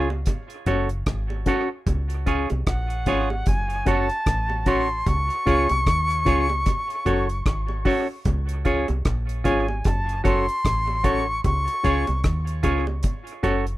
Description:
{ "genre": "roots reggae", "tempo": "75 BPM", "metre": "4/4", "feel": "swing 58% on 16ths", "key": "Db major", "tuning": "A4 = 440 Hz", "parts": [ { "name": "bright reedy silver concert flute", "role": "melody", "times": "0.0-12.2 s", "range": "Gb5 to Db6", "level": "-26 LUFS", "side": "left 1 dB", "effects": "tape echo" }, { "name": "semi-hollow electric guitar", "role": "accompaniment", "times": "0.0-13.6 s", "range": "F4 to Db5", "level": "-28 LUFS", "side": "right 4 dB", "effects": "tape echo" }, { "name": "reed electric piano", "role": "stabs", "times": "0.0-13.6 s", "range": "Db4 to Db5", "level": "-26 LUFS", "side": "left 5 dB", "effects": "fast tremolo" }, { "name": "deep dub fingered electric bass", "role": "bass", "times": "0.0-13.8 s", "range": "Gb1 to Eb2", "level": "-25 LUFS", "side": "equal", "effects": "none" }, { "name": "bongos", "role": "percussion", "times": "0.1-13.7 s", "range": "none", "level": "-35 LUFS", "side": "right 5 dB", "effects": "none" }, { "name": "deep reggae drum kit", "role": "drums", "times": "0.3-13.8 s", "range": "hi-hat, kick drum, rim click", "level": "-25 LUFS", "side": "equal", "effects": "none" } ], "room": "light reverb", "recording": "rough home demo mix", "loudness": "-20 LUFS", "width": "side -16 dB against mid", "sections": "0.0-13.8 A section", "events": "none", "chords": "0.3 Gbm; 1.9 Db; 3.5 Gbm; 5.1 Db; 6.7 Gbm; 8.3 Db; 9.8 Gbm; 11.4 Db; 13.0 Gbm" }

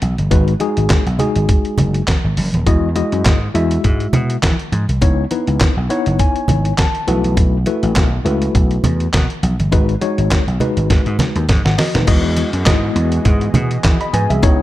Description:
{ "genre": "early-eighties boogie funk", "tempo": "102 BPM", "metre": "4/4", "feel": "swing 56% on 16ths", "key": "E major", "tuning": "A4 = 440 Hz", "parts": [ { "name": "vintage slap bass", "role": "bass", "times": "0.0-14.6 s", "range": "D#1 to E3", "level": "-17 LUFS", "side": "equal", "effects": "none" }, { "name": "dusty soul sampler-style drum kit", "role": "drums", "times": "0.0-14.6 s", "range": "crash cymbal, handclaps, hi-hat, kick drum, snare drum", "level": "-16 LUFS", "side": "equal", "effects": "none" }, { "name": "congas", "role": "percussion", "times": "0.0-14.6 s", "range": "none", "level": "-22 LUFS", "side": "right 2 dB", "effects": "none" }, { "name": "tine electric piano", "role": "accompaniment", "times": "0.3-14.6 s", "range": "G#3 to B5", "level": "-19 LUFS", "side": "left 3 dB", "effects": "overdrive, fast stereo tremolo" }, { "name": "warm analog pad", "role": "sustained chords", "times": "12.1-14.6 s", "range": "C#3 to D#5", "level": "-26 LUFS", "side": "right 2 dB", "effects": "chorus" } ], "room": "light reverb, digital ambience", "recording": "dark, warm production", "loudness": "-13 LUFS", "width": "side -15 dB against mid", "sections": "0.0-12.1 A section; 12.1-14.6 B section", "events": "tine electric piano fill 5.6-7.4; drum fill 10.9-12.1", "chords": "0.3 G#m7; 2.7 Emaj9; 5.0 C#m9; 7.1 B7sus4; 9.7 G#m7; 12.1 Emaj9" }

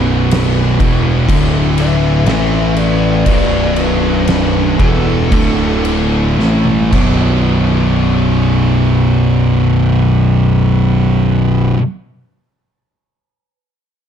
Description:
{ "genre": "stoner and doom metal", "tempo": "54-62 BPM", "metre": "4/4", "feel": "straight", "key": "B minor", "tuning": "A4 = 440 Hz", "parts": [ { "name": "tonewheel organ", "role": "sustained chords", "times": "0.0-11.7 s", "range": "D3 to B4", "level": "-28 LUFS", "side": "equal", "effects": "none" }, { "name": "sludgy distorted guitar", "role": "riff", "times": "0.0-11.8 s", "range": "B1 to D4", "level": "-20 LUFS", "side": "equal", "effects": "overdrive" }, { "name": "thick fuzz guitar", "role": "riff", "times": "0.0-11.8 s", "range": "B1 to A3", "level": "-16 LUFS", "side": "left 6 dB", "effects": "distortion" }, { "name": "thick fuzz guitar", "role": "riff", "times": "0.0-11.8 s", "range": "B1 to A3", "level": "-16 LUFS", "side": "right 9 dB", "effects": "distortion" }, { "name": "fuzz picked electric bass", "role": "bass", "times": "0.0-11.7 s", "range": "B0 to A1", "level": "-17 LUFS", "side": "equal", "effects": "overdrive" }, { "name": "oversized low-tuned drum kit", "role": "drums", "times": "0.3-7.2 s", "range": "crash cymbal, kick drum, snare drum, toms", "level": "-18 LUFS", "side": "equal", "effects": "none" }, { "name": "fuzz lead guitar", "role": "melody", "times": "1.8-5.8 s", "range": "D4 to E5", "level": "-20 LUFS", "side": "left 2 dB", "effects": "distortion, ping-pong delay" } ], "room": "studio ambience", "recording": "dark, warm production", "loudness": "-10 LUFS", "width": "side -8 dB against mid", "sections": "0.0-7.5 A section; 7.5-11.9 B section", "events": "slowing down 0.0-7.5; lead electric guitar solo 0.0-7.5; drum fill 6.4-7.5", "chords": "0.0 B5; 1.3 D5; 2.3 A5; 3.3 Bm; 5.3 D5; 6.4 A5; 6.9 Bm" }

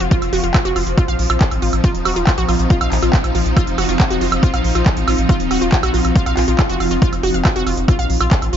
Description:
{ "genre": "psychedelic trance", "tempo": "139 BPM", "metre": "4/4", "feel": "straight", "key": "unclear", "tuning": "A4 = 440 Hz", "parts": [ { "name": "swarming drone", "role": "sustained chords", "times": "0.0-8.6 s", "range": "F3 to F4", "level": "-23 LUFS", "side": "left 1 dB", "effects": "built-in reverb, phaser, sidechain pumping" }, { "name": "wide unison pluck", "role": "riff", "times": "0.0-8.6 s", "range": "F4 to F5", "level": "-22 LUFS", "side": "moving between left 2 dB and right 4 dB", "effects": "auto-pan, sidechain pumping, tape echo" }, { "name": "round analog bass", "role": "bass", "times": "0.0-8.6 s", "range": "Eb1 to Bb1", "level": "-20 LUFS", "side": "equal", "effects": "none" }, { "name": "techno drum kit", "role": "drums", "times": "0.0-8.6 s", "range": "handclaps, hi-hat, woodblock", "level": "-23 LUFS", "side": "right 2 dB", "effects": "none" }, { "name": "ethereal airy pad", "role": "texture", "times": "0.0-8.6 s", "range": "C4 to Eb6", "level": "-25 LUFS", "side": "right 1 dB", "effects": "ensemble chorus, built-in reverb, sidechain pumping" }, { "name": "electronic kick drum", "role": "drums", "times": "0.1-8.4 s", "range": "none", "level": "-14 LUFS", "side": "equal", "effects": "none" }, { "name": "swell", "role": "sound effects", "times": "6.3-7.0 s", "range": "none", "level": "-28 LUFS", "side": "equal", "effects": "none" } ], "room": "digital ambience", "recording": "nothing above 7.6 kHz", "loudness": "-14 LUFS", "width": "side -9 dB against mid", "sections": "0.0-8.6 A section", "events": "swell 6.3-7.0", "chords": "0.0 F5" }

